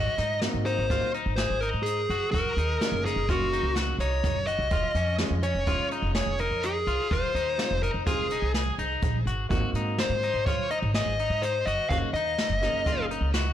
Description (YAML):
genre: progressive instrumental, band music in an uneven meter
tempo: 126 BPM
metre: 5/4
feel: straight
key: Ab mixolydian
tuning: A4 = 441 Hz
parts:
  - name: dark smooth lead guitar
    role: melody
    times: 0.0-13.1 s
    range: Gb4 to F5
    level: -28 LUFS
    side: left 1 dB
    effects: overdrive, ping-pong delay
  - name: electric guitar at the edge of break-up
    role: arpeggios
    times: 0.0-13.5 s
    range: Db4 to Ab4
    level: -33 LUFS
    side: left 2 dB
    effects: none
  - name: upright bass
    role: bass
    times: 0.0-13.5 s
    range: F1 to Ab2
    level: -30 LUFS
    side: equal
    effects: none
  - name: jazz brush drum kit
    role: drums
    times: 0.2-13.4 s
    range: hi-hat, kick drum, snare drum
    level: -31 LUFS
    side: equal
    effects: none
  - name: warm baby grand piano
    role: accompaniment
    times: 0.4-13.3 s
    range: Ab3 to Ab4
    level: -35 LUFS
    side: right 3 dB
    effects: none
room: moderate studio reverb, RT60 0.7 s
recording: blown-out, overdriven recording, overdrive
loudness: -24 LUFS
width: side -10 dB against mid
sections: 0.0-13.5 A section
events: none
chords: 0.0 Ab7; 2.3 Gb6; 4.7 Db/F; 7.1 Fm7; 9.5 Ab7; 11.9 Gb6